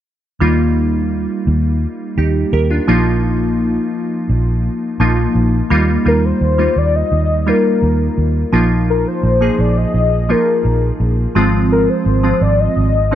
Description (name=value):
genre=1980s-style pop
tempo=85 BPM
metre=4/4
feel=straight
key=Eb major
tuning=A4 = 440 Hz
part: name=glassy digital keys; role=accompaniment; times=0.4-13.2 s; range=F3 to Bb4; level=-17 LUFS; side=right 1 dB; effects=chorus
part: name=vintage muted fingered electric bass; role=bass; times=0.4-13.1 s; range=Ab1 to Eb2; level=-16 LUFS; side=equal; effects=none
part: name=warm velvety synth lead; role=melody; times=6.1-13.1 s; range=Bb4 to Eb5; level=-18 LUFS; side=left 4 dB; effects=chorus, tape echo
room=little or no reverb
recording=dry, close 1970s-style studio recording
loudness=-13 LUFS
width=side -11 dB against mid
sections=0.4-6.1 A section; 6.1-13.2 B section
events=none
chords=0.4 Ebadd9; 2.9 Bbsus4; 5.7 Ebadd9; 8.5 Bbsus4; 11.4 Fm/Ab